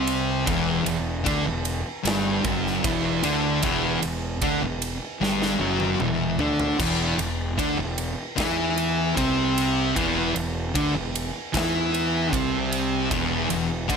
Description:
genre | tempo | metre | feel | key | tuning
stoner and doom metal | 76 BPM | 4/4 | straight | E minor | A4 = 441 Hz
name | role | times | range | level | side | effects
thick fuzz guitar | riff | 0.0-14.0 s | E2 to E4 | -26 LUFS | left 10 dB | distortion
thick fuzz guitar | riff | 0.0-14.0 s | E2 to E4 | -26 LUFS | right 9 dB | distortion
fuzz fingered electric bass | bass | 0.0-14.0 s | E1 to E2 | -30 LUFS | equal | overdrive
big rock drum kit | drums | 0.1-14.0 s | crash cymbal, kick drum, ride cymbal, snare drum, toms | -29 LUFS | right 1 dB | none
room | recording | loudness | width
light reverb, small room ambience | none | -22 LUFS | side -6 dB against mid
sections
0.0-14.0 A section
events
drum fill 5.2-6.8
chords
0.0 Em

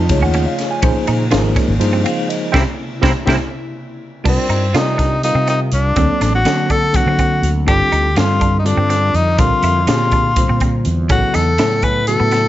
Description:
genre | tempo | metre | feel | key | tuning
electric jazz fusion | 245 BPM (eighths) | 7/8 | straight | unclear | A4 = 440 Hz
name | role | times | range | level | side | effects
tine electric piano | accompaniment | 0.0-12.5 s | C#3 to A5 | -20 LUFS | equal | overdrive, fast stereo tremolo
airy breathy pad | sustained chords | 0.0-4.2 s | C3 to F4 | -27 LUFS | equal | chorus
semi-hollow electric guitar | stabs | 0.0-12.5 s | Bb3 to F#4 | -25 LUFS | right 4 dB | analog chorus
fretless electric bass | bass | 0.0-12.5 s | G1 to D3 | -17 LUFS | equal | none
crisp fusion drum kit | drums | 0.1-12.4 s | crash cymbal, hi-hat, kick drum, ride cymbal, snare drum | -19 LUFS | equal | none
bright tenor saxophone | melody | 4.3-12.5 s | C4 to B4 | -17 LUFS | left 2 dB | none
room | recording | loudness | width
light reverb | nothing above 7.8 kHz | -13 LUFS | side -14 dB against mid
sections
0.0-4.3 A section; 4.3-12.5 B section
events
band accent 2.5-4.3; tine electric piano fill 3.5-4.3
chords
0.0 F7alt; 0.8 Bbm9; 2.5 C7b9; 4.3 Cm11; 6.0 D7b13; 7.7 Gsus2; 9.4 Bb7#11; 11.1 A69

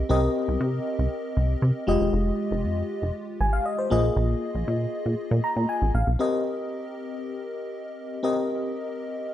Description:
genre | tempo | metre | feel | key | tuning
early-eighties boogie funk | 118 BPM | 4/4 | straight | unclear | A4 = 440 Hz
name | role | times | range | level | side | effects
FM electric piano with soft pad layer | accompaniment | 0.0-9.3 s | Ab3 to Bb5 | -26 LUFS | left 1 dB | chorus
plucky analog bass | bass | 0.0-6.2 s | E1 to C3 | -24 LUFS | equal | none
room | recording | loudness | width
light reverb, digital ambience | lossy compression artefacts | -23 LUFS | side -12 dB against mid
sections
0.0-6.2 A section; 6.2-9.3 B section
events
FM electric piano fill 5.2-6.2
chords
0.0 Cm7; 1.9 Fm9; 3.9 Bb7sus4; 6.2 Cm7

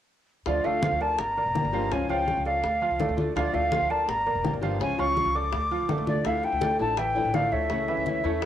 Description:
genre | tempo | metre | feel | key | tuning
latin, Cuban son and guajira | 166 BPM | 4/4 | straight | D harmonic minor | A4 = 440 Hz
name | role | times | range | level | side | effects
silver concert flute | melody | 0.5-8.5 s | D5 to D6 | -26 LUFS | left 1 dB | none
flamenco guitar | accompaniment | 0.5-8.5 s | C#3 to G4 | -31 LUFS | left 6 dB | cassette tape
bright concert grand piano | arpeggios | 0.5-8.5 s | E3 to F5 | -32 LUFS | right 8 dB | cassette tape
upright bass | bass | 0.5-8.5 s | E1 to E2 | -33 LUFS | equal | none
bongos | percussion | 0.5-8.5 s | none | -36 LUFS | left 10 dB | none
congas | percussion | 0.5-8.5 s | none | -33 LUFS | equal | none
room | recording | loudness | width
moderate spring reverb, RT60 1.5 s, small room ambience | home recording on cassette | -23 LUFS | side -10 dB against mid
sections
0.5-6.3 A section; 6.3-8.5 B section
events
none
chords
0.5 Dm; 1.2 Gm; 1.9 C#; 2.6 Dm; 4.1 Gm; 4.8 C#; 5.5 Dm; 6.3 Dmadd9; 7.7 A/C#

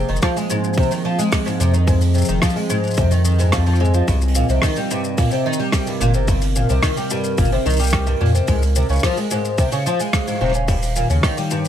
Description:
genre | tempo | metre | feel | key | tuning
folktronica | 109 BPM | 4/4 | straight | unclear | A4 = 440 Hz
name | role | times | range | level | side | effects
warbly tape-like pad | sustained chords | 0.0-11.7 s | C3 to F5 | -24 LUFS | right 2 dB | chorus, built-in reverb
fingerpicked twelve-string acoustic guitar | arpeggios | 0.0-11.7 s | G2 to Ab3 | -21 LUFS | left 1 dB | analog chorus, tape echo
warm sub bass | bass | 0.0-11.2 s | Eb1 to F2 | -17 LUFS | equal | none
soft brush drum kit | drums | 0.1-11.7 s | hi-hat, rim click, shaker | -26 LUFS | equal | none
electronic kick drum | drums | 0.2-11.3 s | none | -20 LUFS | equal | overdrive
room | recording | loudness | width
light reverb | none | -16 LUFS | side -10 dB against mid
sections
0.0-11.7 A section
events
none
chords
0.0 Fm7; 4.1 Cm7; 8.5 Dbmaj7; 10.7 Eb7

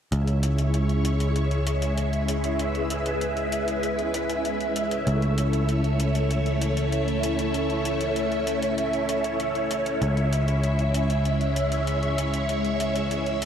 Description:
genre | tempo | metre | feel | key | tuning
synthwave | 97 BPM | 4/4 | straight | C# minor | A4 = 440 Hz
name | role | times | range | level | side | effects
string machine, full ensemble | sustained chords | 0.1-13.5 s | G#3 to E5 | -25 LUFS | equal | phaser, ensemble chorus
picked electric bass | bass | 0.1-13.5 s | C#2 | -26 LUFS | equal | low-pass filter
electronic hi-hat | drums | 0.1-13.5 s | none | -36 LUFS | left 2 dB | overdrive
room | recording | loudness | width
wet lush hall reverb, RT60 1.6 s | dreamy mix soaked in reverb | -22 LUFS | side -8 dB against mid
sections
0.1-13.5 A section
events
filter sweep on picked electric bass 0.1-13.5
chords
0.1 C#m; 5.1 A/C#; 10.0 C#m

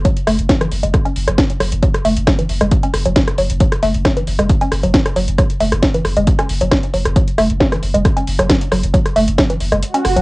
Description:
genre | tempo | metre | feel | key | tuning
driving peak-time techno | 135 BPM | 4/4 | straight | F# minor | A4 = 438 Hz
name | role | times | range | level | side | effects
woody wave-folded pluck | riff | 0.0-10.2 s | E3 to C#4 | -18 LUFS | equal | chorus, sidechain pumping, cassette tape, tape echo
saturated sub bass | bass | 0.0-10.2 s | F#1 | -19 LUFS | equal | overdrive, sidechain pumping, low-pass filter
techno drum kit | drums | 0.0-10.2 s | hi-hat, rim click, snare drum | -19 LUFS | equal | sidechain pumping on hats
electronic kick drum | drums | 0.1-9.5 s | none | -16 LUFS | equal | none
swell | sound effects | 9.9-10.2 s | none | -18 LUFS | right 2 dB | none
room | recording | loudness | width
light reverb | home recording on cassette | -13 LUFS | side -22 dB against mid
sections
0.0-10.2 A section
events
kick drops out 9.8-10.2; swell 9.9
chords
none

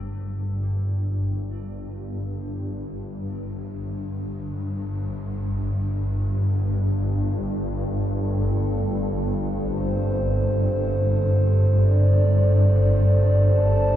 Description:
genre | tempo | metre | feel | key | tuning
dark ambient drone | free time | none | none | unclear | A4 = 440 Hz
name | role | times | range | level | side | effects
old church bells | arpeggios | 0.0-1.5 s | F#4 to A4 | -49 LUFS | equal | ping-pong delay
swarming drone | drone | 0.0-14.0 s | G1 to G2 | -21 LUFS | equal | built-in reverb
dark analog pad | sustained chords | 8.1-14.0 s | A4 to A5 | -26 LUFS | right 1 dB | chorus
room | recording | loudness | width
wet cathedral reverb, RT60 6.1 s | dark, warm production | -21 LUFS | side -11 dB against mid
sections
0.0-14.0 A section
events
fade-in on synth drone 0.0-14.0; fade-out on church bells 0.0-14.0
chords
0.0 Gsus2

